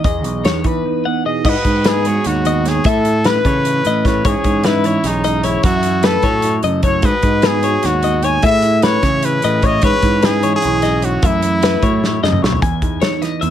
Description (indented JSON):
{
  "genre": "math rock and midwest emo",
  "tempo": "301 BPM (eighths)",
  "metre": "7/8",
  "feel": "straight",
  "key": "E major",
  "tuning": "A4 = 438 Hz",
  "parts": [
    { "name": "mellow electric guitar", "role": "accompaniment", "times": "0.0-13.5 s", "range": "E2 to B4", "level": "-21 LUFS", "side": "right 7 dB", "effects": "phaser" },
    { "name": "twelve-string electric guitar", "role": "arpeggios", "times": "0.0-13.5 s", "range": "B4 to G#5", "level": "-20 LUFS", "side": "left 9 dB", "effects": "none" },
    { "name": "growling picked electric bass", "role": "bass", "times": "0.0-13.5 s", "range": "B1 to E3", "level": "-19 LUFS", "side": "equal", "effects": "overdrive" },
    { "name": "loose indie drum kit", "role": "drums", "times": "0.0-13.5 s", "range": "crash cymbal, hi-hat, kick drum, snare drum, toms", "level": "-19 LUFS", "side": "equal", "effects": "none" },
    { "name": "bright trumpet", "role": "melody", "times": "1.3-12.2 s", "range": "D#4 to G#5", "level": "-18 LUFS", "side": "equal", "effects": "none" }
  ],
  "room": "light reverb",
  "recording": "none",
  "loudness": "-13 LUFS",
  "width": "side -10 dB against mid",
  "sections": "0.0-1.4 A section; 1.4-12.6 B section",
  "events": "drum fill 12.0-12.6",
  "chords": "0.0 Emaj9; 1.4 G#m7; 2.9 Aadd9; 4.2 E6/G#; 5.6 F#m7; 7.0 G#m7; 8.4 Amaj9; 9.8 E6/G#; 11.2 F#m7; 12.6 Emaj7"
}